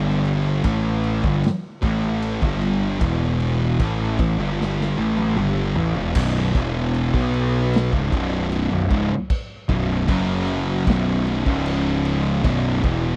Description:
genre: stoner and doom metal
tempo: 76 BPM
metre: 4/4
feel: straight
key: B minor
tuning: A4 = 439 Hz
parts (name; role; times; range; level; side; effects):
- thick fuzz guitar; riff; 0.0-13.2 s; B1 to B3; -27 LUFS; equal; distortion
- thick fuzz guitar; riff; 0.0-13.2 s; B1 to B3; -26 LUFS; equal; distortion
- fuzz picked electric bass; bass; 0.0-13.2 s; B0 to B1; -27 LUFS; equal; overdrive
- raw garage drum kit; drums; 0.1-13.0 s; crash cymbal, kick drum, ride cymbal, snare drum, toms; -28 LUFS; equal; none
room: small room ambience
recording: dry, close 1970s-style studio recording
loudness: -21 LUFS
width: mono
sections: 0.0-6.2 A section; 6.2-13.2 B section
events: drum fill 4.6-6.2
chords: 0.0 G5; 3.0 E5; 3.8 G5; 6.2 B5; 10.1 F#5; 10.9 B5; 11.5 C#5; 12.4 B5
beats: 0.65 1.44 2.23 | 3.01 3.80 4.59 5.37 | 6.16 6.94 7.73 8.52 | 9.30 10.09 10.87 11.66 | 12.44

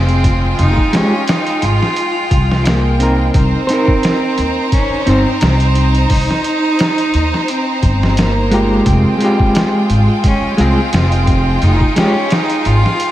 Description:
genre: trip hop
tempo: 87 BPM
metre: 4/4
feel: swing 55% on 16ths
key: F minor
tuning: A4 = 441 Hz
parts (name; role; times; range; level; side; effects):
- bright cello; melody; 0.0-13.1 s; Bb3 to F4; -18 LUFS; equal; vintage 12-bit sampler grit, tape echo
- clear studio violin section; sustained chords; 0.0-13.1 s; Ab3 to Bb5; -20 LUFS; right 1 dB; none
- upright bass; bass; 0.0-12.8 s; F1 to Eb2; -14 LUFS; equal; none
- trip hop sampler-style drum kit; drums; 0.1-13.1 s; hi-hat, kick drum, snare drum; -17 LUFS; equal; vintage 12-bit sampler grit
- semi-hollow electric guitar; accompaniment; 0.9-12.2 s; Ab3 to C5; -17 LUFS; equal; tremolo
room: moderate plate reverb, RT60 1.7 s, studio ambience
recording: dreamy mix soaked in reverb, vinyl crackle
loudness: -11 LUFS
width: side -13 dB against mid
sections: 0.0-13.1 A section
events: none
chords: 0.0 Fmadd9; 3.3 Cm7; 8.9 Fmadd9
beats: | 0.58 1.27 1.96 2.65 | 3.34 4.03 4.72 5.41 | 6.10 6.79 7.48 8.17 | 8.86 9.55 10.24 10.93 | 11.62 12.31 13.00

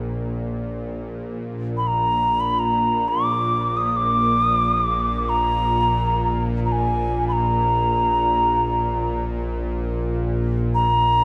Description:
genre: world meditative, free-time meditation music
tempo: free time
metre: none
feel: none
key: Bb major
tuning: A4 = 440 Hz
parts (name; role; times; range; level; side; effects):
- bowed-like drone; drone; 0.0-11.2 s; Bb1 to Bb2; -26 LUFS; equal; built-in reverb
- bright alto ocarina; melody; 1.8-11.2 s; Ab5 to Eb6; -22 LUFS; equal; tape echo
room: moderate lush hall reverb, RT60 1.6 s, small room ambience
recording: dark, warm production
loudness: -21 LUFS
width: mono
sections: 0.6-11.2 A section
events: none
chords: none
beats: free time

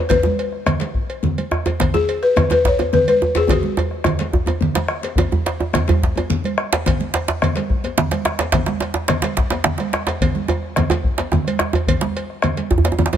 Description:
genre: west african traditional, West African drum ensemble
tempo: 143 BPM (dotted quarters)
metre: 12/8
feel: straight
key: unclear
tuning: A4 = 442 Hz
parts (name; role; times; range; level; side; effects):
- balafon; melody; 0.0-4.6 s; F#4 to C#5; -18 LUFS; left 3 dB; none
- bombo; percussion; 0.1-12.8 s; none; -23 LUFS; left 2 dB; none
- congas; percussion; 0.1-13.2 s; none; -24 LUFS; right 7 dB; none
- cowbell; percussion; 0.1-13.2 s; none; -29 LUFS; left 2 dB; none
- djembe; percussion; 0.1-13.1 s; none; -24 LUFS; left 6 dB; none
- djembe; percussion; 0.1-13.2 s; none; -20 LUFS; right 3 dB; none
room: light reverb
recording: none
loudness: -16 LUFS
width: side -10 dB against mid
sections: 0.0-5.2 A section; 5.2-13.2 B section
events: drum fill 3.5-5.2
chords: none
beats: | 0.10 0.53 0.95 1.38 | 1.80 2.22 2.65 3.07 | 3.49 3.91 4.33 4.76 | 5.18 5.60 6.02 6.44 | 6.86 7.28 7.70 8.12 | 8.54 8.96 9.37 9.79 | 10.21 10.63 11.04 11.46 | 11.88 12.29 12.71 13.12

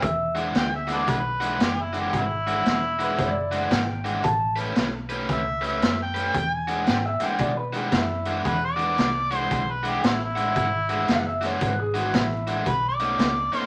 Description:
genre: electric blues shuffle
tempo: 114 BPM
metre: 4/4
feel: swing 64% on 8ths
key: E mixolydian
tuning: A4 = 440 Hz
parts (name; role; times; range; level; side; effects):
- electric guitar through a small old amp; second line; 0.0-12.6 s; E4 to A5; -30 LUFS; equal; none
- cranked stack guitar; riff; 0.0-13.7 s; B2 to B4; -30 LUFS; equal; overdrive
- vintage muted fingered electric bass; bass; 0.0-13.6 s; E1 to B2; -34 LUFS; equal; none
- raw garage drum kit; drums; 0.0-13.6 s; hi-hat, kick drum, snare drum; -29 LUFS; equal; none
- mellow harmonica; melody; 0.6-13.7 s; E4 to G#5; -28 LUFS; equal; overdrive
room: moderate studio reverb, RT60 0.5 s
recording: vinyl crackle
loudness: -24 LUFS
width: mono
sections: 0.0-13.7 A section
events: none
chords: 0.0 E9; 4.2 A9; 6.3 E9; 12.7 B9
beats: | 0.02 0.55 1.07 1.60 | 2.13 2.66 3.18 3.71 | 4.24 4.76 5.29 5.82 | 6.34 6.87 7.39 7.92 | 8.45 8.97 9.50 10.03 | 10.55 11.08 11.61 12.13 | 12.66 13.19

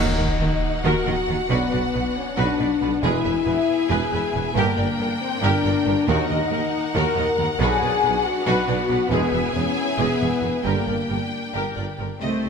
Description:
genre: cinematic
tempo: 275 BPM (eighths)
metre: 7/8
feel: straight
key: unclear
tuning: A4 = 440 Hz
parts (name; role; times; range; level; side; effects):
- rich symphonic violin section; melody; 0.0-12.5 s; Eb5 to G#5; -32 LUFS; left 2 dB; none
- mellow hollow flute section; second line; 0.0-11.5 s; Bb4 to Bb5; -29 LUFS; left 4 dB; none
- warm symphonic violin section; second line; 0.0-12.5 s; Gb4 to E5; -31 LUFS; left 2 dB; none
- clear symphonic viola section; accompaniment; 0.0-12.5 s; C4 to B4; -30 LUFS; equal; none
- dark French horn section; sustained chords; 0.0-12.5 s; Bb3 to Bb4; -25 LUFS; left 5 dB; none
- mellow trombone section; sustained chords; 0.0-12.5 s; D3 to Eb4; -35 LUFS; right 3 dB; none
- rich symphonic string section; sustained chords; 0.0-12.2 s; G3 to G5; -31 LUFS; left 1 dB; none
- clear symphonic cello section; bass; 0.0-12.5 s; Eb2 to A3; -28 LUFS; right 2 dB; none
- clear symphonic double bass section; bass; 0.0-12.5 s; E1 to Eb2; -29 LUFS; right 4 dB; none
- dark tuba; bass; 0.0-12.5 s; E1 to Eb2; -30 LUFS; right 5 dB; none
- timpani; percussion; 0.0-0.6, 6.1-6.7 s; Eb3; -32 LUFS; left 2 dB; none
- sub drop; sound effects; 0.0-1.5 s; none; -33 LUFS; equal; none
room: wet scoring stage reverb, RT60 1.9 s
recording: none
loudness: -19 LUFS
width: side -6 dB against mid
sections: 0.0-12.2 A section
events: impact 0.0-1.5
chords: 0.0 Ebm; 1.5 Bm; 3.0 E; 4.6 Gm; 6.1 Ebm; 7.6 Bm; 9.1 E; 10.7 Gm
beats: 0.18 0.40 0.62 0.84 1.06 1.28 | 1.50 1.72 1.94 2.16 2.38 2.59 2.81 | 3.03 3.25 3.46 3.68 3.90 4.12 4.34 | 4.56 4.78 4.99 5.21 5.43 5.64 5.86 | 6.08 6.30 6.51 6.73 6.95 7.17 7.39 | 7.60 7.82 8.04 8.26 8.47 8.69 8.90 | 9.12 9.34 9.55 9.77 9.99 10.21 10.43 | 10.65 10.88 11.10 11.32 11.54 11.77 11.99 | 12.21 12.43

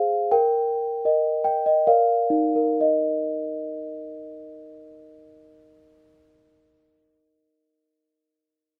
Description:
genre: classical, lullaby for celesta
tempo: 60-88 BPM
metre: 3/4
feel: straight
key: Eb major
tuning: A4 = 439 Hz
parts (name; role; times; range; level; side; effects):
- celesta; solo; 0.0-8.8 s; Eb4 to G5; -23 LUFS; equal; none
room: little or no reverb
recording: close, detailed microphones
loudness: -22 LUFS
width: mono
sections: 0.0-2.8 A section; 2.8-8.8 B section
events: slowing down 0.0-2.8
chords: 0.3 Eb/Bb; 1.9 Bb; 2.8 Eb5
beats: | 0.32 1.05 1.88 | 2.81 3.80 4.80 | 5.79 6.78 7.78

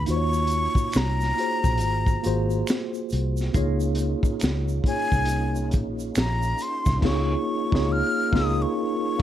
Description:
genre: R&B, neo-soul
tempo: 69 BPM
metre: 4/4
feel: swing 61% on 16ths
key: Db major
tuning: A4 = 440 Hz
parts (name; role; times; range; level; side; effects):
- breathy jazz flute; melody; 0.0-9.2 s; Ab5 to F6; -27 LUFS; left 2 dB; slapback echo
- mellow tine electric piano; accompaniment; 0.0-9.2 s; Bb3 to Db5; -27 LUFS; equal; medium stereo tremolo
- vintage muted fingered electric bass; bass; 0.0-8.6 s; Ab1 to Eb2; -25 LUFS; equal; none
- crunchy breakbeat drum kit; drums; 0.1-9.2 s; crash cymbal, hi-hat, kick drum, snare drum; -25 LUFS; equal; none
- tube shaker and finger snaps; percussion; 0.1-7.0 s; none; -40 LUFS; right 5 dB; none
- percussive tonewheel organ; sustained chords; 3.5-9.2 s; Bb3 to F4; -36 LUFS; right 2 dB; chorus vibrato, slow rotary speaker
room: little or no reverb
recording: dark, warm production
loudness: -21 LUFS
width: side -11 dB against mid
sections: 0.0-9.2 A section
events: band accent 7.0-9.2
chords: 0.1 Ebm9; 1.8 Ab13; 3.5 Db69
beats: | 0.07 0.94 1.80 2.67 | 3.54 4.41 5.28 6.15 | 7.02 7.89 8.76

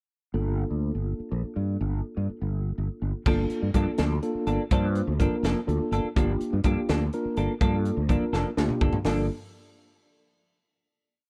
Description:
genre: electric jazz fusion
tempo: 83 BPM (dotted quarters)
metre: 6/8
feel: straight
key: G minor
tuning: A4 = 443 Hz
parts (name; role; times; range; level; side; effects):
- mellow tine electric piano; accompaniment; 0.3-9.3 s; Bb3 to C5; -32 LUFS; equal; none
- fretless electric bass; bass; 0.3-9.3 s; F1 to G2; -29 LUFS; equal; analog chorus
- clean electric guitar; stabs; 3.3-9.3 s; F3 to A4; -34 LUFS; equal; lush chorus
- crisp fusion drum kit; drums; 3.3-9.2 s; crash cymbal, hi-hat, kick drum, snare drum, toms; -29 LUFS; equal; none
room: small room ambience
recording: none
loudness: -27 LUFS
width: mono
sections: 0.3-3.3 intro; 3.3-9.1 groove; 9.1-10.5 final chord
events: drum fill 8.3-9.1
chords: 0.3 Gm9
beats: | 0.34 1.07 | 1.80 2.53 | 3.26 3.98 | 4.71 5.43 | 6.16 6.88 | 7.61 8.33 | 9.05

